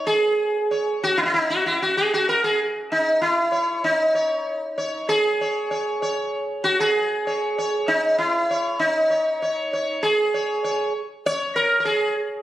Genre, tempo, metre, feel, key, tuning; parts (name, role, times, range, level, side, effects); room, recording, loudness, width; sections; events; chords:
indian classical; 97 BPM; 4/4; straight; C# raga kafi; A4 = 444 Hz
sitar; solo; 0.0-12.1 s; D#4 to C#5; -19 LUFS; equal
light reverb; recorded on a phone in the room, studio reverb; -19 LUFS; side -14 dB against mid
0.0-12.4 A section
speeding up 0.0-12.4